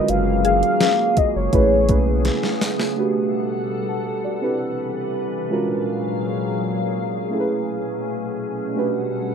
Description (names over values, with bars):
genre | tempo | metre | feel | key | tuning
contemporary R&B | 83 BPM | 4/4 | straight | unclear | A4 = 440 Hz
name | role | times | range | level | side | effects
warm velvety synth lead | melody | 0.0-2.6 s | C#5 to E#5 | -20 LUFS | left 1 dB | chorus, ping-pong delay
muted felt-like synth keys | accompaniment | 0.0-9.3 s | G#3 to A5 | -24 LUFS | right 3 dB | chorus
glassy FM pad | sustained chords | 0.0-9.3 s | A#2 to F#5 | -24 LUFS | left 1 dB | ensemble chorus, built-in reverb
warm sub bass | bass | 0.1-2.3 s | F#1 to B1 | -22 LUFS | left 1 dB | none
smooth R&B drum kit | drums | 0.1-3.0 s | hi-hat, kick drum, snare drum | -22 LUFS | left 1 dB | none
mallet-like synth pluck | texture | 0.4-1.9 s | G#4 | -28 LUFS | left 6 dB | chorus, ping-pong delay
room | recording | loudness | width
moderate small room ambience, RT60 0.5 s | rough home demo mix | -19 LUFS | side -7 dB against mid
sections
0.0-3.0 A section; 3.0-9.3 B section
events
drum fill 2.3-3.0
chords
0.0 F#maj9; 1.5 Amaj9; 3.0 Gmaj9; 4.4 Cmaj9; 5.5 F#maj9; 7.3 Amaj9; 8.8 Gmaj9